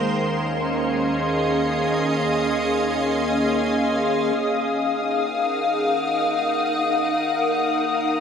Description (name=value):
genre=ambient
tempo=free time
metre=none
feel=none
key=Eb dorian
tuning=A4 = 440 Hz
part: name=soft additive organ-like pad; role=sustained chords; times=0.0-8.2 s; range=Ab3 to Gb5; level=-21 LUFS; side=left 1 dB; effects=ensemble chorus, built-in reverb
part: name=clear symphonic double bass section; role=bass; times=0.0-4.3 s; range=Eb2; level=-42 LUFS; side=right 1 dB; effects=none
part: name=overtone-sweeping drone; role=drone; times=0.0-8.2 s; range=Eb3 to Bb3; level=-28 LUFS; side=right 1 dB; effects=chorus, built-in reverb
part: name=muted studio violin section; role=texture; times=0.0-8.2 s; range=C6 to Eb6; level=-29 LUFS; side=left 1 dB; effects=none
room=wet plate reverb, RT60 3.4 s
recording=dreamy mix soaked in reverb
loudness=-19 LUFS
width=side -7 dB against mid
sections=0.0-4.4 A section; 4.4-8.2 B section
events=none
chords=0.2 Dbmaj9/Eb; 4.4 Ebm7